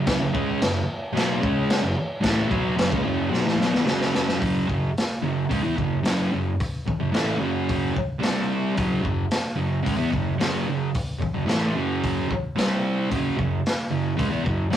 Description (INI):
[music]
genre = garage rock duo or trio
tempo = 110 BPM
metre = 4/4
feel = straight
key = unclear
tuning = A4 = 439 Hz
[part]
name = thick fuzz guitar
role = riff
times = 0.0-14.8 s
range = E2 to C#4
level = -23 LUFS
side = equal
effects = distortion
[part]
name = crunchy breakbeat drum kit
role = drums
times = 0.1-14.8 s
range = crash cymbal, hi-hat, kick drum, snare drum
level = -26 LUFS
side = equal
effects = none
[sound]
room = wet studio ambience, RT60 0.5 s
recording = rough rehearsal-room recording, warm saturation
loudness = -21 LUFS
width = side -10 dB against mid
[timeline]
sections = 0.0-4.4 A section; 4.4-14.8 B section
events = drum fill 3.3-4.4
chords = 0.0 F#5; 8.2 C5; 8.8 F#5; 12.6 C5; 13.1 F#5